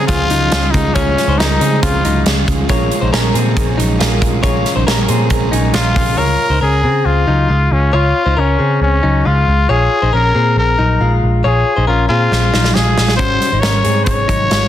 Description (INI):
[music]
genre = jangly indie pop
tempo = 137 BPM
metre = 4/4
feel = straight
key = Db major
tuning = A4 = 440 Hz
[part]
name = growling trumpet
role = melody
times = 0.0-2.2, 5.7-14.7 s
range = Db4 to Db5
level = -16 LUFS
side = left 2 dB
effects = tape echo
[part]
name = crunchy overdriven guitar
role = accompaniment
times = 0.0-6.2 s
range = Bb2 to Db4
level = -23 LUFS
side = right 6 dB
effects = spring reverb
[part]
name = warm analog keys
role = accompaniment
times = 0.0-6.2 s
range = Db4 to C6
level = -24 LUFS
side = right 4 dB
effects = chorus
[part]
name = direct-recorded clean electric guitar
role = arpeggios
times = 0.0-14.7 s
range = Gb3 to Db5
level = -19 LUFS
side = left 4 dB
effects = none
[part]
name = vintage muted picked electric bass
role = bass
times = 0.0-14.7 s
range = Ab1 to Db3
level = -15 LUFS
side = equal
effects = none
[part]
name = big rock drum kit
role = drums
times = 0.1-6.1, 12.3-14.6 s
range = hi-hat, kick drum, snare drum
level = -17 LUFS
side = right 1 dB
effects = soft clipping on kick
[sound]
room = light reverb, small room ambience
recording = dense, heavily limited modern master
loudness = -11 LUFS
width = side -11 dB against mid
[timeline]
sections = 0.0-6.2 A section; 6.2-14.7 B section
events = synth keys fill 4.9-6.2; drum fill 12.3-13.2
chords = 0.0 Db; 2.7 Bbm7; 6.2 Db; 9.7 Bbm7; 13.2 Ab7sus4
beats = 0.09 0.52 | 0.96 1.39 1.83 2.26 | 2.70 3.13 3.57 4.00 | 4.44 4.88 5.31 5.75 | 6.19 6.62 7.06 7.50 | 7.94 8.38 8.82 9.26 | 9.69 10.13 10.57 11.01 | 11.45 11.88 12.32 12.76 | 13.20 13.63 14.07 14.51